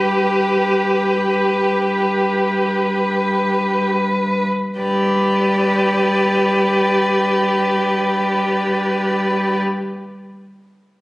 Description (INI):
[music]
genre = classical, slow romantic movement for string quartet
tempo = free time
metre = none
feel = none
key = G major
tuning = A4 = 440 Hz
[part]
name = rich violin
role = melody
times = 0.0-9.6 s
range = B4 to D5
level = -28 LUFS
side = left 2 dB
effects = none
[part]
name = rich violin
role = second line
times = 0.0-9.6 s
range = B4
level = -20 LUFS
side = left 1 dB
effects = none
[part]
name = rich viola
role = accompaniment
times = 0.0-9.6 s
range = G4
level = -19 LUFS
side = equal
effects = none
[part]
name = rich cello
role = bass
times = 0.0-9.6 s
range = G2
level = -22 LUFS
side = equal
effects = none
[sound]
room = moderate scoring stage reverb, RT60 1.5 s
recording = recorded on a phone in the room, studio ambience, compression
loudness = -15 LUFS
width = side -20 dB against mid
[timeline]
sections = 0.0-4.8 A section; 4.8-11.0 B section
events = slowing down 0.0-4.8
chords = 0.0 G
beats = free time